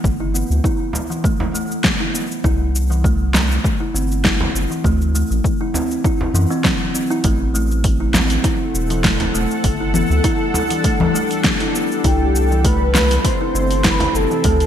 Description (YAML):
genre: organic downtempo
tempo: 100 BPM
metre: 4/4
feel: swing 54% on 16ths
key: unclear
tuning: A4 = 438 Hz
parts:
  - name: round analog bass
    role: bass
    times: 0.0-14.7 s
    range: E1 to F#2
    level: -19 LUFS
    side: equal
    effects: sidechain pumping
  - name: electronic kick drum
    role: drums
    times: 0.0-14.6 s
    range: none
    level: -20 LUFS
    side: equal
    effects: overdrive
  - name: deep house drum kit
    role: drums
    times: 0.1-14.7 s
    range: congas, hi-hat, shaker, snare drum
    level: -21 LUFS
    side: left 1 dB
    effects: overdrive, gated reverb
  - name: kalimba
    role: arpeggios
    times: 0.2-14.6 s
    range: E3 to E4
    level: -22 LUFS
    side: right 1 dB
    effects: ping-pong delay
  - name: frame drum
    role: percussion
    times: 0.9-14.1 s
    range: none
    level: -28 LUFS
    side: right 2 dB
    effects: none
  - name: bowed-like drone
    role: sustained chords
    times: 8.3-14.7 s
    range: C3 to F#5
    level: -23 LUFS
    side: left 2 dB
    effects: built-in reverb, sidechain pumping
  - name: breathy flute-like synth lead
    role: melody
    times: 12.1-14.7 s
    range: G4 to C5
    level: -20 LUFS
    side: equal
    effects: ensemble chorus, ping-pong delay
room: moderate lush hall reverb, RT60 1.8 s, digital ambience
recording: bright 1980s-style digital production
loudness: -15 LUFS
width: side -10 dB against mid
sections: 0.0-14.7 A section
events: none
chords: 0.0 G; 2.4 C; 4.8 D7; 7.2 Am6; 9.6 Gmaj7; 12.0 Cmaj7